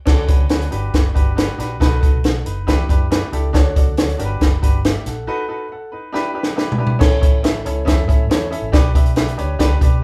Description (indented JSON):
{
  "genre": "uptempo 1960s-style soul",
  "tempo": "138 BPM",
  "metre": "4/4",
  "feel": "straight",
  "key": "A mixolydian",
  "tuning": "A4 = 440 Hz",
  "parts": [
    { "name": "bright upright piano", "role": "accompaniment", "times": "0.1-10.0 s", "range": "C#4 to F#5", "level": "-26 LUFS", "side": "equal", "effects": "none" },
    { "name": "vintage muted fingered electric bass", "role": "bass", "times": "0.1-10.0 s", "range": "F#1 to B2", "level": "-25 LUFS", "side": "equal", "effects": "none" },
    { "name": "compact cocktail drum kit", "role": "drums", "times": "0.1-9.9 s", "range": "crash cymbal, hi-hat, kick drum, snare drum, toms", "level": "-17 LUFS", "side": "equal", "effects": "none" }
  ],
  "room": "light reverb",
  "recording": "band playing live in one room",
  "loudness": "-17 LUFS",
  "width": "mono",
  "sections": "0.1-7.0 A section; 7.0-10.0 B section",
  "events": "break 5.3-7.0; drum fill 6.1-7.0; upright piano fill 9.8",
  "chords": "0.1 Dmaj7; 0.7 Gmaj7; 1.8 B7; 2.7 Em7; 3.5 Dmaj7; 4.2 Gmaj7; 5.3 B7; 6.1 Em7; 7.0 A; 8.7 G/B"
}